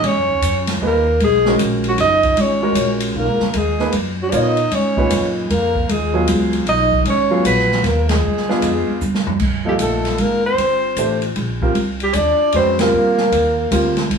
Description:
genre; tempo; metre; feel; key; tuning
modal jazz; 154 BPM; 3/4; swing 64% on 8ths; G# dorian, C dorian from 9.4 s; A4 = 440 Hz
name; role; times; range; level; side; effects
clear alto saxophone; melody; 0.0-14.0 s; F#4 to D#5; -18 LUFS; right 1 dB; none
bright trombone; second line; 0.0-14.0 s; F#3 to D#4; -24 LUFS; left 2 dB; none
clear grand piano; accompaniment; 0.0-13.9 s; A#2 to C#5; -20 LUFS; right 1 dB; none
upright bass; bass; 0.0-14.2 s; F#1 to A#2; -21 LUFS; equal; none
open jazz drum kit; drums; 0.0-14.2 s; crash cymbal, hi-hat, kick drum, ride cymbal, snare drum, toms; -24 LUFS; right 1 dB; none
room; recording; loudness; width
wet studio reverb, RT60 0.6 s; band playing live in one room, small room ambience; -14 LUFS; side -6 dB against mid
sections
0.0-9.4 A section; 9.4-14.2 B section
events
band accent 8.0, 12.7; drum fill 9.0-9.4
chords
0.0 G#m11; 8.2 G7b9; 9.4 Cm9

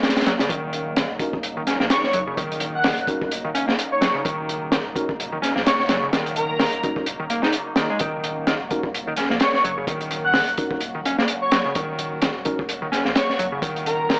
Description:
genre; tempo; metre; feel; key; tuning
breakbeat, breaks; 128 BPM; 4/4; swing 57% on 16ths; Eb minor; A4 = 440 Hz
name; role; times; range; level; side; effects
phased analog pad; sustained chords; 0.0-14.2 s; Db3 to Gb4; -32 LUFS; equal; phaser, chorus, sidechain pumping
crunchy breakbeat drum kit; drums; 0.0-14.2 s; hi-hat, kick drum, snare drum; -22 LUFS; equal; none
overdriven picked electric bass; riff; 0.3-14.2 s; Db3 to Eb4; -26 LUFS; equal; tape echo
saturated sub bass; bass; 0.5-14.2 s; Eb1 to Bb1; -42 LUFS; equal; none
mellow tine electric piano; stabs; 1.2-12.6 s; Db4 to Bb4; -28 LUFS; equal; fast stereo tremolo, vintage 12-bit sampler grit, tape echo
airy dreamy lead; melody; 1.9-14.2 s; Bb4 to Gb5; -22 LUFS; equal; chorus, telephone sound, tape echo
room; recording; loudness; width
moderate plate reverb, RT60 1.2 s, small room ambience; dry, gritty hardware recording, AM radio sound; -20 LUFS; side -38 dB against mid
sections
0.0-14.2 A section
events
break 0.0-0.5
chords
0.0 Ebm7

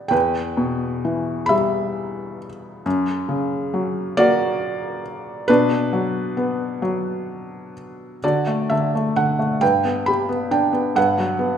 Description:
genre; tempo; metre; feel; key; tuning
classical, lyrical solo piano; 44 BPM (dotted quarters); 6/8; rubato; B minor, D major from 8.2 s; A4 = 440 Hz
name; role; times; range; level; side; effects
felt-muted upright piano; solo; 0.0-11.6 s; E2 to B5; -19 LUFS; equal; none
room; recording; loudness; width
moderate scoring stage reverb, RT60 1.6 s; recorded in a church or concert hall; -18 LUFS; side -8 dB against mid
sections
0.0-8.2 A section; 8.2-11.6 B section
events
none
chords
0.1 Em; 2.9 F#; 5.5 Bm; 8.2 D; 9.6 G; 11.0 Gmaj7

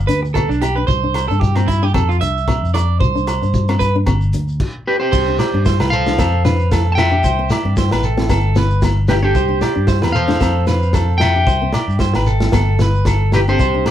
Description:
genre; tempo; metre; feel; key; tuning
highlife guitar band; 113 BPM; 4/4; swing 55% on 16ths; C major; A4 = 440 Hz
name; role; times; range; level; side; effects
fingered electric bass; bass; 0.0-13.8 s; G1 to G2; -17 LUFS; equal; none
nylon-string guitar; accompaniment; 0.1-13.9 s; B3 to E4; -25 LUFS; left 4 dB; none
electric guitar at the edge of break-up; arpeggios; 0.1-13.9 s; C4 to E5; -22 LUFS; right 5 dB; none
crunchy breakbeat drum kit; drums; 0.1-13.9 s; crash cymbal, hi-hat, kick drum, rim click, snare drum; -20 LUFS; equal; none
shekere; percussion; 0.1-13.9 s; none; -24 LUFS; left 1 dB; none
agogo bells; percussion; 0.4-13.9 s; none; -28 LUFS; left 2 dB; none
electric guitar at the edge of break-up; melody; 4.9-13.9 s; G4 to A5; -19 LUFS; left 1 dB; none
room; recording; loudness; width
moderate small room reverb, RT60 0.5 s; band playing live in one room; -13 LUFS; side -11 dB against mid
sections
0.0-5.1 A section; 5.1-13.9 B section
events
clean electric guitar solo 0.0-5.1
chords
0.0 G; 0.9 C5; 1.9 F5; 3.0 C5; 4.1 G5; 5.1 C; 6.2 F; 7.2 C; 8.3 G; 9.4 C; 10.4 F; 11.5 C; 12.5 G

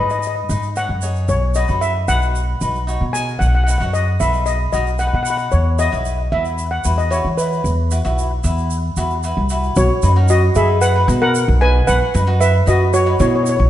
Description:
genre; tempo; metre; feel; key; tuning
calypso; 113 BPM; 4/4; straight; B major; A4 = 440 Hz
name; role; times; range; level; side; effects
steel pan; melody; 0.0-13.6 s; E4 to G#5; -19 LUFS; equal; none
cavaquinho; accompaniment; 0.0-13.5 s; D#4 to C#5; -24 LUFS; left 1 dB; none
upright bass; bass; 0.0-13.7 s; B1 to E3; -17 LUFS; equal; none
tube shaker; percussion; 0.1-13.6 s; none; -32 LUFS; right 9 dB; none
room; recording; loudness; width
light reverb; dark, warm production, nothing above 11.0 kHz; -14 LUFS; side -12 dB against mid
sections
0.0-9.8 A section; 9.8-13.7 B section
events
none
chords
0.0 G#m; 1.3 B; 5.5 Esus2; 9.8 Badd9

